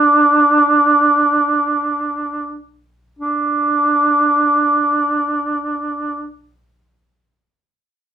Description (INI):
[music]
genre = caucasian folk, Caucasian lament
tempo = free time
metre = none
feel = none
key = unclear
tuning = A4 = 440 Hz
[part]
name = mellow duduk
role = solo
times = 0.0-6.3 s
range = D4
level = -13 LUFS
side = right 2 dB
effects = none
[sound]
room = moderate studio reverb, RT60 0.6 s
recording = minimal, uncompressed stereo recording, faint mains hum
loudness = -13 LUFS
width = side -9 dB against mid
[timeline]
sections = 0.0-3.2 A section; 3.2-7.9 B section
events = slowing down 0.0-3.2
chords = none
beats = free time